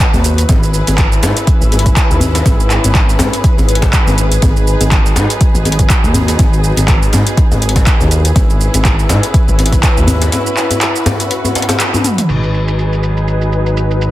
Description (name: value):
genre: afro house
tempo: 122 BPM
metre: 4/4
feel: swing 56% on 16ths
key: G# minor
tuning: A4 = 440 Hz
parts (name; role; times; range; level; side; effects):
- dark studio string section; sustained chords; 0.0-14.1 s; F#3 to B4; -19 LUFS; left 1 dB; sidechain pumping, low-pass filter
- deep house drum kit; drums; 0.0-14.1 s; crash cymbal, handclaps, hi-hat, shaker, toms; -18 LUFS; equal; overdrive, low-pass filter on perc, low-pass filter on hats, low-pass filter on snare, low-pass filter on toms, low-pass filter on cymbals
- electronic kick drum; drums; 0.0-9.9 s; none; -12 LUFS; equal; overdrive
- smooth gliding synth bass; bass; 0.1-14.1 s; G#1 to G#2; -14 LUFS; equal; sidechain pumping
- djembe; percussion; 0.1-12.0 s; none; -19 LUFS; left 1 dB; none
room: light reverb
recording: dense, heavily limited modern master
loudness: -10 LUFS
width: side -15 dB against mid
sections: 0.0-12.3 A section; 12.3-14.1 B section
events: break 10.3-12.3; drum fill 11.9-12.3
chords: 0.5 C#m7/G#; 4.4 G#m7; 8.4 C#m7/G#; 12.3 G#m7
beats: 0.00 | 0.49 0.98 1.47 1.96 | 2.46 2.95 3.44 3.93 | 4.42 4.92 5.41 5.90 | 6.39 6.88 7.37 7.87 | 8.36 8.85 9.34 9.83 | 10.32 10.82 11.31 11.80 | 12.29 12.78 13.28 13.77